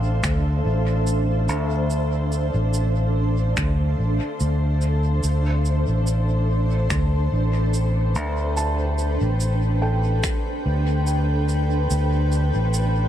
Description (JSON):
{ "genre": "ambient dub", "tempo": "72 BPM", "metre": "4/4", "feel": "swing 54% on 16ths", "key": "D dorian", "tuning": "A4 = 438 Hz", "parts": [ { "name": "granular cloud pad", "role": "sustained chords", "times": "0.0-13.1 s", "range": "D4 to G5", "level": "-26 LUFS", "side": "equal", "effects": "built-in reverb" }, { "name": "felt-muted upright piano", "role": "arpeggios", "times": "0.0-13.1 s", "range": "A4 to A5", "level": "-35 LUFS", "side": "right 3 dB", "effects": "analog delay" }, { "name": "fingered electric bass", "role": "bass", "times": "0.0-13.1 s", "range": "A1 to D2", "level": "-20 LUFS", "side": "equal", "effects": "none" }, { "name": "electronic finger snaps and cabasa", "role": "drums", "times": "0.2-12.9 s", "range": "none", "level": "-31 LUFS", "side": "right 2 dB", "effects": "overdrive, dub echo" }, { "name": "electronic kick drum", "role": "drums", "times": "0.2-10.4 s", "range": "none", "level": "-27 LUFS", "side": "equal", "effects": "none" } ], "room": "digital ambience", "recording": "echo-heavy mix", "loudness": "-19 LUFS", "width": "side -11 dB against mid", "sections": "0.0-13.1 A section", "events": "none", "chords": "0.0 Dm9; 5.2 Am7" }